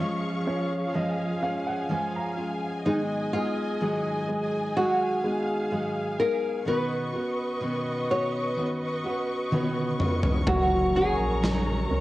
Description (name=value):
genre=pop ballad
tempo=63 BPM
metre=4/4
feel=straight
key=unclear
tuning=A4 = 440 Hz
part: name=nylon-string guitar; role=melody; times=0.0-12.0 s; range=Eb4 to C#5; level=-27 LUFS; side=equal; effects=cassette tape
part: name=clear baby grand piano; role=accompaniment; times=0.0-12.0 s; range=F3 to Bb5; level=-30 LUFS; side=right 1 dB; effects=cassette tape
part: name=warm studio string section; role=sustained chords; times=0.0-12.0 s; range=F3 to Db6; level=-32 LUFS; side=equal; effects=cassette tape
part: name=picked steel-string acoustic guitar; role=arpeggios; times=0.0-12.0 s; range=Gb2 to Ab4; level=-33 LUFS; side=left 2 dB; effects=cassette tape, analog delay
part: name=huge arena drum kit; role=drums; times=9.5-11.7 s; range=kick drum, snare drum, toms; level=-27 LUFS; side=equal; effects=cassette tape
part: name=warm sub bass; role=bass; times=10.5-12.0 s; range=Gb1 to Db2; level=-30 LUFS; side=equal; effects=none
room=light reverb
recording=home recording on cassette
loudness=-24 LUFS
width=side -17 dB against mid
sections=0.0-12.0 A section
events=grand piano fill 0.0-2.9; drum fill 9.5-10.5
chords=0.0 Db/F; 2.9 Abm7; 6.7 Badd9; 10.5 Gb